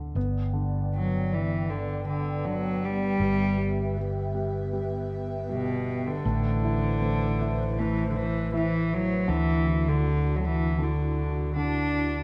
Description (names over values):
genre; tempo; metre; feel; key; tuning
acoustic folk-pop ballad; 79 BPM; 4/4; straight; G major; A4 = 440 Hz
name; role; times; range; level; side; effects
warm grand piano; accompaniment; 0.0-12.2 s; D3 to E4; -36 LUFS; equal; none
fretless electric bass; bass; 0.0-12.2 s; G1 to D2; -32 LUFS; equal; none
airy breathy pad; sustained chords; 0.2-12.2 s; D3 to G5; -38 LUFS; equal; chorus
dark cello; melody; 0.9-12.2 s; B2 to D4; -30 LUFS; equal; slapback echo
room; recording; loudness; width
little or no reverb; close, detailed microphones; -27 LUFS; mono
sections
0.0-12.2 A section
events
none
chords
0.2 G; 3.2 Em/G; 6.2 Amadd9; 9.3 Dadd9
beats
| 0.16 0.92 1.68 2.44 | 3.20 3.96 4.72 5.48 | 6.24 7.00 7.76 8.52 | 9.28 10.04 10.80 11.56